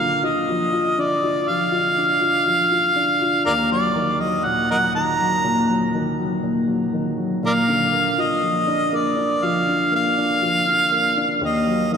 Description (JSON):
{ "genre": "acoustic folk-pop ballad", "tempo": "60 BPM", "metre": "4/4", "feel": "straight", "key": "Bb major", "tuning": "A4 = 440 Hz", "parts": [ { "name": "warm harmonica", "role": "melody", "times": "0.0-12.0 s", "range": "Bb4 to Bb5", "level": "-19 LUFS", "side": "right 1 dB", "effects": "none" }, { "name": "warm upright piano", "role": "accompaniment", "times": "0.0-12.0 s", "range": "Eb2 to F4", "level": "-22 LUFS", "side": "left 1 dB", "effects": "none" } ], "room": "wet cathedral reverb, RT60 5.0 s", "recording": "in a vast, echoing space", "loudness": "-17 LUFS", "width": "side -7 dB against mid", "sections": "0.0-12.0 A section", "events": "none", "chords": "0.0 Bb; 3.5 Ebm; 7.4 Bb; 11.4 Ebm" }